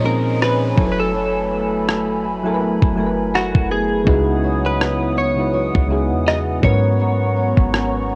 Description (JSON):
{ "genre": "contemporary R&B", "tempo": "82 BPM", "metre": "4/4", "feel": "swing 58% on 16ths", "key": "unclear", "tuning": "A4 = 438 Hz", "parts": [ { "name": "direct-recorded clean electric guitar", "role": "melody", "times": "0.0-8.1 s", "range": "Gb4 to Eb5", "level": "-25 LUFS", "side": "equal", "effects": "analog chorus" }, { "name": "soft electric-piano-like synth keys", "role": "accompaniment", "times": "0.0-8.2 s", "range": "Ab2 to Ab5", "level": "-24 LUFS", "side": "equal", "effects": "chorus, cassette tape" }, { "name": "hollow soft pad", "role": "sustained chords", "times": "0.0-8.2 s", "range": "A3 to Eb6", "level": "-28 LUFS", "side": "equal", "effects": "chorus, cassette tape" }, { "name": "flamenco guitar", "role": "arpeggios", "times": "0.0-8.2 s", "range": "Ab2 to A4", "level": "-30 LUFS", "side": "equal", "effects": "cassette tape, tape echo" }, { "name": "clean 808-style bass", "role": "bass", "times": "0.0-8.2 s", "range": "Gb1 to Bb2", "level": "-24 LUFS", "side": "equal", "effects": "none" }, { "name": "downlifter", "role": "sound effects", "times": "0.0-4.1 s", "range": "none", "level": "-41 LUFS", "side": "equal", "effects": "none" }, { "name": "dusty soul sampler-style drum kit", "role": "drums", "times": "0.4-7.9 s", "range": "kick drum, rim click", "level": "-20 LUFS", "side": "equal", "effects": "cassette tape" } ], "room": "light reverb", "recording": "home recording on cassette", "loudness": "-18 LUFS", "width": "mono", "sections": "0.0-8.2 A section", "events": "break 0.0-8.2", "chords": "0.0 Bbm11; 0.8 Gbm11; 4.1 Dbm11; 6.6 Abm11" }